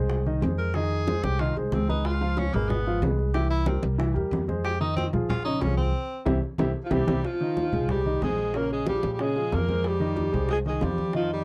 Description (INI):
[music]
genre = Afro-Cuban jazz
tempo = 185 BPM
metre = 4/4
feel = straight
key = F minor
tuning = A4 = 440 Hz
[part]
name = warm baby grand piano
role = accompaniment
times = 0.0-11.4 s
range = Db3 to F5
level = -32 LUFS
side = equal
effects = none
[part]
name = upright bass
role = bass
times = 0.0-11.4 s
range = Ab1 to Bb2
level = -30 LUFS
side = equal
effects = none
[part]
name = bongos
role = percussion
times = 0.1-11.4 s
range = none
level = -37 LUFS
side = equal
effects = none
[part]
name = congas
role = percussion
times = 0.1-11.4 s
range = none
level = -34 LUFS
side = equal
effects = none
[part]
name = clear tenor saxophone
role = second line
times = 0.6-11.4 s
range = F3 to Bb4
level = -35 LUFS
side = equal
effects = none
[part]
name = warm alto saxophone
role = melody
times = 6.9-11.4 s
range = F4 to Bb4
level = -31 LUFS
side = equal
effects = none
[sound]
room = little or no reverb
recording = dry, close 1970s-style studio recording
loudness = -26 LUFS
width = mono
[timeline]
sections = 0.0-7.2 A section; 7.2-11.4 B section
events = tenor saxophone solo 0.0-7.2; band accent 5.9-7.2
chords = 0.0 Fm7; 2.0 Db7; 3.3 C7; 4.6 Fm7; 5.3 Bbm7; 5.9 C; 7.2 Fm7; 8.5 Bbm7; 9.8 Fm7